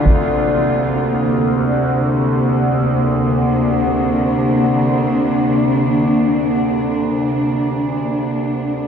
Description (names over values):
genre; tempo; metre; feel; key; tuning
ambient; free time; none; none; unclear; A4 = 442 Hz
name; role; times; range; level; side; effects
muted symphonic cello section; sustained chords; 0.0-8.9 s; C3 to F4; -16 LUFS; right 1 dB; none
bright concert grand piano; arpeggios; 0.0-8.9 s; C2 to G3; -36 LUFS; equal; none
overtone-sweeping drone; drone; 0.0-8.9 s; D2 to D3; -19 LUFS; left 1 dB; chorus, built-in reverb, phaser
room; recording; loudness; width
wet huge ambient reverb, RT60 8.4 s; none; -14 LUFS; side -7 dB against mid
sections
0.0-8.9 A section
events
fade-out 5.4-8.9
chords
0.1 Bbadd9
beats
free time